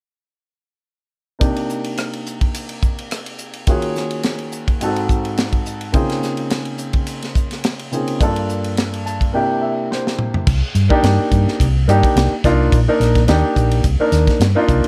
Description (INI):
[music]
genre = electric jazz fusion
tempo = 106 BPM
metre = 4/4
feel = swing 54% on 16ths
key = C minor from 10.5 s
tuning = A4 = 439 Hz
[part]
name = warm grand piano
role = accompaniment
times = 1.4-14.9 s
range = G2 to A5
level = -22 LUFS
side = equal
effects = plate reverb
[part]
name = tight funk drum kit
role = drums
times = 1.4-14.9 s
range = crash cymbal, hi-hat, kick drum, ride cymbal, rim click, snare drum, toms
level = -22 LUFS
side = equal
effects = none
[part]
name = hollow-body short-scale fingered electric bass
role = bass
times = 10.5-14.9 s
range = Bb1 to G2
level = -18 LUFS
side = equal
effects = none
[sound]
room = light reverb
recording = none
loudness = -18 LUFS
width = mono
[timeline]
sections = 1.4-10.5 A section; 10.5-14.9 B section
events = grand piano fill 8.8-10.5; drum fill 9.9-10.5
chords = 1.4 Cm9; 3.7 Ebm11; 4.8 Ab7b9; 5.9 Dbmaj13; 8.2 Gm7; 9.3 C7; 10.5 Cm9